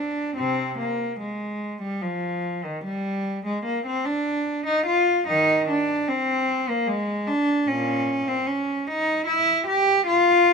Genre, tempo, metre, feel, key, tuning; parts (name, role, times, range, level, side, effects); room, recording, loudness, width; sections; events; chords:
classical, baroque-style suite movement for unaccompanied cello; 74 BPM; 3/4; rubato; C minor; A4 = 440 Hz
rich cello; solo; 0.0-10.5 s; Bb2 to G4; -21 LUFS; equal
moderate stone room reverb, RT60 1.1 s; -21 LUFS; side -5 dB against mid
0.0-10.5 A section